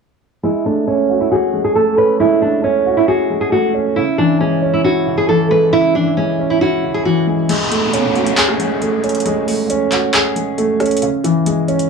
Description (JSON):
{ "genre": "hip hop, trap", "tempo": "136 BPM", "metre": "4/4", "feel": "half-time", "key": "F# minor", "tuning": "A4 = 440 Hz", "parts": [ { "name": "nylon-string guitar", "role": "melody", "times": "0.4-7.3 s", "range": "C#4 to B4", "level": "-15 LUFS", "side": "right 2 dB", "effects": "low-pass filter, analog delay" }, { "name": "dark concert grand piano", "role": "accompaniment", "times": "0.4-11.9 s", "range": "C#3 to G#4", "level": "-16 LUFS", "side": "equal", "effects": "low-pass filter" }, { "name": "techno drum kit", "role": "drums", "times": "7.5-11.9 s", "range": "crash cymbal, handclaps, hi-hat, rim click", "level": "-20 LUFS", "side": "equal", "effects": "overdrive" }, { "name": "downlifter", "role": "sound effects", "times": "7.5-11.0 s", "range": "none", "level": "-22 LUFS", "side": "right 3 dB", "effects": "none" } ], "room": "moderate digital room reverb, RT60 1.1 s, small room ambience", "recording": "dry, gritty hardware recording, cassette tape", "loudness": "-13 LUFS", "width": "side -5 dB against mid", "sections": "0.4-7.5 A section; 7.5-11.9 B section", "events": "filter sweep 0.4-7.5; kick muted 7.5-11.9", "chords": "0.4 F#madd9; 4.0 C#m; 7.5 F#madd9; 11.0 C#m" }